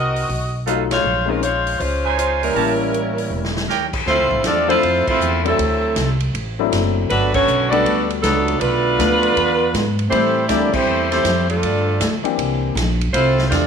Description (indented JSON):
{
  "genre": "jazz, big band swing",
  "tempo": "159 BPM",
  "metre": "4/4",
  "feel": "swing 64% on 8ths",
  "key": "D minor from 4.1 s",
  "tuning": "A4 = 442 Hz",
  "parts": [
    { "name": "warm saxophone section", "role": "melody", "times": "0.0-13.7 s", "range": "F#3 to Eb5", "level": "-18 LUFS", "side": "left 1 dB", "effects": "none" },
    { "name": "upright bass", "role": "bass", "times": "0.0-13.7 s", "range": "E1 to A2", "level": "-22 LUFS", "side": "equal", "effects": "none" },
    { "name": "swinging big-band drum kit", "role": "drums", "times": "0.2-13.6 s", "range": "crash cymbal, hi-hat, kick drum, ride cymbal, snare drum", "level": "-26 LUFS", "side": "equal", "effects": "none" },
    { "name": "clear baby grand piano", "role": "accompaniment", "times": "0.7-12.7 s", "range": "E3 to G4", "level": "-23 LUFS", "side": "left 13 dB", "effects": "none" },
    { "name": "clear trumpet section", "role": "stabs", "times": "0.7-3.9 s", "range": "D#4 to A5", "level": "-23 LUFS", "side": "right 13 dB", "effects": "none" },
    { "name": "warm trombone section", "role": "second line", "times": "2.4-13.7 s", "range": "C3 to F4", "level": "-24 LUFS", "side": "right 13 dB", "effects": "none" }
  ],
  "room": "moderate echo chamber reverb, RT60 1.5 s, studio reverb",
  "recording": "1960s-style stereo with parts hard left and right",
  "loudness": "-16 LUFS",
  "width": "side -6 dB against mid",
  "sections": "0.0-4.1 A section; 4.1-13.7 B section",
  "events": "band accent 0.9, 5.0, 7.3, 10.7; drum fill 3.3-3.7",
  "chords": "0.3 B7#11; 1.0 Bbm11; 2.6 A7b9; 4.1 Dm9; 5.6 D9; 7.1 Gmaj9; 8.6 Bm7b5; 9.4 E7b9; 10.1 Am7; 12.4 C7; 13.1 Fmaj7"
}